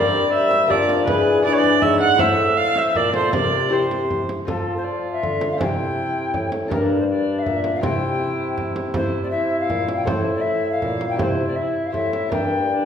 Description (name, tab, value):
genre	classical, renaissance-style consort dance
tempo	160 BPM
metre	3/4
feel	straight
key	unclear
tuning	A4 = 441 Hz
part	mellow alto recorder	melody	0.0-12.9 s	G4 to Ab5	-25 LUFS	left 4 dB	none
part	rich viola	second line	0.0-12.9 s	D4 to F#5	-22 LUFS	right 3 dB	none
part	lute	accompaniment	0.0-12.9 s	G2 to C5	-24 LUFS	left 4 dB	none
part	mellow bassoon	bass	0.0-12.9 s	G2 to G3	-26 LUFS	right 1 dB	none
part	frame drum	percussion	0.5-12.5 s	none	-28 LUFS	right 2 dB	none
room	wet recital hall reverb, RT60 1.4 s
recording	heard from further back in the room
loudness	-18 LUFS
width	side -8 dB against mid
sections	0.0-4.5 A section; 4.5-12.9 B section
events	none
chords	0.0 Gm; 1.1 E7; 2.2 Am; 3.3 C; 4.5 F; 5.6 C; 6.7 Gm; 7.8 C; 10.1 Am; 11.2 C; 12.3 Gm